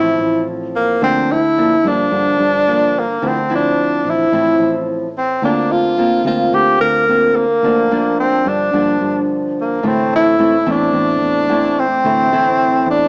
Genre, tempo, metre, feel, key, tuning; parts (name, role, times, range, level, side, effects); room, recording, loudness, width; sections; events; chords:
bossa nova; 109 BPM; 4/4; straight; A4 = 440 Hz
breathy tenor saxophone; melody; 0.0-13.1 s; Bb3 to Bb4; -16 LUFS; equal; cassette tape, plate reverb
nylon-string guitar; accompaniment; 0.0-13.1 s; A2 to F4; -21 LUFS; equal; plate reverb
fingered electric bass; bass; 0.0-13.1 s; A1 to G2; -28 LUFS; equal
wet small room reverb, RT60 0.6 s; home recording on cassette, small speaker sound; -15 LUFS; mono
0.0-13.1 A section
0.0 Dm9 (rootless); 1.0 Bb6/D; 3.2 Dm9; 5.4 Bb69/D; 9.8 Am/D